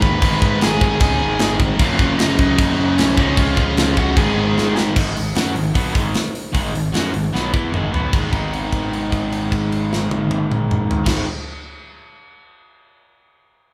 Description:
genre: punk rock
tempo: 152 BPM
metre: 4/4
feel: straight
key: G# dorian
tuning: A4 = 440 Hz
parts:
  - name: bluesy overdriven lead guitar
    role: melody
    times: 0.0-4.8 s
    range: C#4 to B5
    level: -25 LUFS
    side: equal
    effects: distortion
  - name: distorted electric guitar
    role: riff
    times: 0.0-11.3 s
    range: F#2 to F#4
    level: -26 LUFS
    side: equal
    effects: distortion
  - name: distorted electric guitar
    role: riff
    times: 0.0-11.2 s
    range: F#2 to B4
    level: -25 LUFS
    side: equal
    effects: distortion
  - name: heavy high-gain guitar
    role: riff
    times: 0.0-5.0 s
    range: F#2 to C#4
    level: -27 LUFS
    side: equal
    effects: distortion
  - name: fuzz picked electric bass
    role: bass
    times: 0.0-11.2 s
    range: F#1 to F#2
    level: -27 LUFS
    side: equal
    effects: overdrive
  - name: tight metal drum kit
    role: drums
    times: 0.0-11.2 s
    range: crash cymbal, hi-hat, kick drum, snare drum, toms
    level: -22 LUFS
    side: equal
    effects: none
room: light reverb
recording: band playing live in one room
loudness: -18 LUFS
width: mono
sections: 0.0-5.0 A section; 5.0-8.1 B section; 8.1-11.3 C section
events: drum fill 4.6-5.0, 7.3-8.1; held note 8.1-11.1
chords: 0.0 G#m; 1.8 F#; 3.2 C#; 4.2 G#m

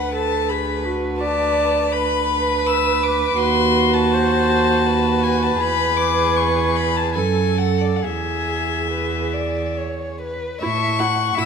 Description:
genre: classical, slow romantic movement for string quartet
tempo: 66-86 BPM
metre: 3/4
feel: rubato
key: unclear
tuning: A4 = 440 Hz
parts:
  - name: rich violin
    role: melody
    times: 0.0-11.5 s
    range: D5 to E6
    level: -22 LUFS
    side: left 8 dB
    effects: none
  - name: rich violin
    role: second line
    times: 0.0-11.5 s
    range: F#4 to F#5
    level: -25 LUFS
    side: left 2 dB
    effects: none
  - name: warm viola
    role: accompaniment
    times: 0.0-11.4 s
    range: E4 to D5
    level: -22 LUFS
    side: right 2 dB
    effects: none
  - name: rich cello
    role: bass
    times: 0.0-11.5 s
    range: D2 to A2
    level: -23 LUFS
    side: right 4 dB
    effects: none
room: wet recital hall reverb, RT60 1.4 s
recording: minimal, uncompressed stereo recording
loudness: -17 LUFS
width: side -6 dB against mid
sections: 0.0-10.6 A section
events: none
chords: 0.0 Bm/D; 3.4 D#dim7; 5.6 E; 7.2 F#m; 8.0 E; 10.6 A

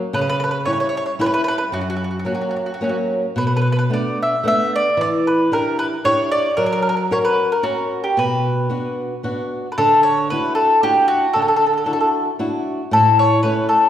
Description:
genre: italian folk, Italian serenade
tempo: 113 BPM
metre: 3/4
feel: rubato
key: B harmonic minor, D major from 9.8 s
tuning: A4 = 440 Hz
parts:
  - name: flamenco guitar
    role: accompaniment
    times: 0.0-13.8 s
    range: F#2 to A#4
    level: -20 LUFS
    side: equal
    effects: none
  - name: mandolin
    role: melody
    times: 0.1-13.9 s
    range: F#4 to E5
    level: -17 LUFS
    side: equal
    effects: none
room: wet scoring stage reverb, RT60 1.4 s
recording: heard from further back in the room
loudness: -16 LUFS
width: side -10 dB against mid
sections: 0.0-9.8 A section; 9.8-13.9 B section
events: none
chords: 0.1 C#dim; 1.7 F#; 3.4 Bm7; 5.0 Em7; 6.6 F#; 8.2 Bm; 9.8 Dadd9; 12.9 A

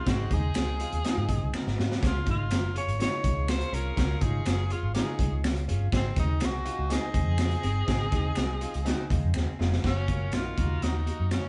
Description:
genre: uptempo 1960s-style soul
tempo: 123 BPM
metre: 4/4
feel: straight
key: Db major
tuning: A4 = 441 Hz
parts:
  - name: warm tenor saxophone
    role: melody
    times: 0.0-11.5 s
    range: C4 to Db5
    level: -37 LUFS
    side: equal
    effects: none
  - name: clear horn section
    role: second line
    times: 0.0-11.5 s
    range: Eb4 to Eb5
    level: -46 LUFS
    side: equal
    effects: none
  - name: warm concert grand piano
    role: accompaniment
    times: 0.1-11.5 s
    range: Bb3 to Ab5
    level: -42 LUFS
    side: equal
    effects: none
  - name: vintage hollow-body jazz guitar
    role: riff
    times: 0.1-11.3 s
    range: C4 to Ab4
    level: -44 LUFS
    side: equal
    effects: none
  - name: vintage muted fingered electric bass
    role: bass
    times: 0.1-11.4 s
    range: F1 to Ab2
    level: -31 LUFS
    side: equal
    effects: none
  - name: crunchy breakbeat drum kit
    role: drums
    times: 0.1-11.4 s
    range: crash cymbal, hi-hat, kick drum, snare drum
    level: -32 LUFS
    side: equal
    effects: none
  - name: finger snaps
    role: percussion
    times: 0.6-11.4 s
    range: none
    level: -46 LUFS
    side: equal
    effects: none
room: moderate studio reverb, RT60 0.9 s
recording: band playing live in one room, nothing above 10.5 kHz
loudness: -28 LUFS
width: mono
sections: 0.0-9.8 A section; 9.8-11.5 B section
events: drum fill 1.5-2.0, 9.3-9.8; grand piano fill 8.9-9.8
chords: 0.0 Ab; 2.0 Db; 5.9 Ab; 9.8 Gb; 10.6 Ebm

